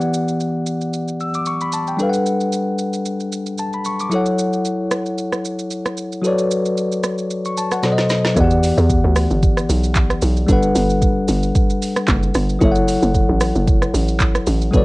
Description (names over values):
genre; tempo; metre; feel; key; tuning
amapiano; 113 BPM; 4/4; swing 55% on 16ths; E dorian; A4 = 440 Hz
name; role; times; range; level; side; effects
bell-like tine electric piano; accompaniment; 0.0-14.8 s; B2 to E6; -19 LUFS; left 1 dB; cassette tape
afro-pop drum kit; drums; 0.0-14.8 s; handclaps, hi-hat, kick drum, rim click, shaker, snare drum; -20 LUFS; right 1 dB; cassette tape
hollow log drum bass; bass; 8.4-14.8 s; F#1 to E2; -18 LUFS; equal; none
room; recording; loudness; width
light reverb; home recording on cassette; -16 LUFS; side -21 dB against mid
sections
0.0-8.4 A section; 8.4-14.8 B section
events
drum fill 7.8-8.4; drop 8.4-14.8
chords
0.0 Em9; 2.0 Gmaj9; 4.1 F#m7; 6.2 Bm9/F#; 7.8 B7b9; 8.4 Em9; 10.5 Gmaj9; 12.6 F#m7